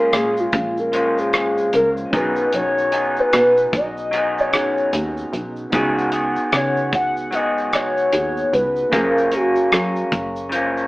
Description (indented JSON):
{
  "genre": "indie pop, bedroom pop",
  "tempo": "75 BPM",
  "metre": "4/4",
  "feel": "swing 60% on 16ths",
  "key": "unclear",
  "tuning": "A4 = 437 Hz",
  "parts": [
    { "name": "warbly nostalgic lead", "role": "melody", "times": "0.0-10.1 s", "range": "E#4 to F#5", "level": "-19 LUFS", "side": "equal", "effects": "chorus" },
    { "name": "electric guitar through a small old amp", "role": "accompaniment", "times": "0.0-10.9 s", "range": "F#2 to G#4", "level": "-23 LUFS", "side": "equal", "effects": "vibrato effect" },
    { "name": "tine electric piano", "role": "accompaniment", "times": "0.0-10.9 s", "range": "A#3 to E#5", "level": "-28 LUFS", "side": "right 1 dB", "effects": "none" },
    { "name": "plucky analog bass", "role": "bass", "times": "0.1-10.9 s", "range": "F#1 to C#3", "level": "-28 LUFS", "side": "equal", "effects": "none" },
    { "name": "damped 70s drum kit", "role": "drums", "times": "0.1-10.9 s", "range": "hi-hat, kick drum, rim click, shaker", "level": "-22 LUFS", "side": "equal", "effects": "none" }
  ],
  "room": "moderate studio reverb, RT60 0.8 s",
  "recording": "band playing live in one room, AM radio sound",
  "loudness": "-17 LUFS",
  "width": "side -20 dB against mid",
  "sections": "0.0-10.9 A section",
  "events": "soft synth lead solo 0.0-10.9",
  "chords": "0.0 A#m7; 2.1 B6; 5.7 C#7sus4; 8.9 F#maj7"
}